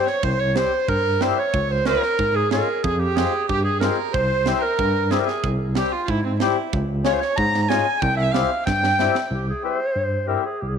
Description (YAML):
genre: klezmer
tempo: 93 BPM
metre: 2/4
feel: straight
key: C phrygian dominant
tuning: A4 = 439 Hz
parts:
  - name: warm clarinet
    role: melody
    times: 0.0-10.8 s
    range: C4 to Bb5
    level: -23 LUFS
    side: equal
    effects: none
  - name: rich violin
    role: second line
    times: 0.0-9.3 s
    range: C4 to Bb5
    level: -27 LUFS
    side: right 10 dB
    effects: none
  - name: mellow accordion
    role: accompaniment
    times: 0.0-10.4 s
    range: G3 to G4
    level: -26 LUFS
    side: left 12 dB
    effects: none
  - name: tight metal drum kit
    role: drums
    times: 0.1-9.3 s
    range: kick drum, snare drum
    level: -28 LUFS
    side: right 6 dB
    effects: none
  - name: overdriven tine electric piano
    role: bass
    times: 0.2-10.8 s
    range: C2 to Ab2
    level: -24 LUFS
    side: equal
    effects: medium tremolo
room: moderate plate reverb, RT60 2.1 s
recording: 1960s-style stereo with parts hard left and right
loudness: -18 LUFS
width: side -7 dB against mid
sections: 0.0-9.3 A section; 9.3-10.8 B section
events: clarinet solo 0.0-9.3; drum fill 8.7-9.3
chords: 0.0 C; 1.5 Db; 2.8 Fm; 4.1 C; 6.7 Db; 8.0 C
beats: | 0.23 0.89 | 1.54 2.19 | 2.84 3.49 | 4.14 4.79 | 5.44 6.08 | 6.73 7.38 | 8.02 8.67 | 9.31 9.96 | 10.60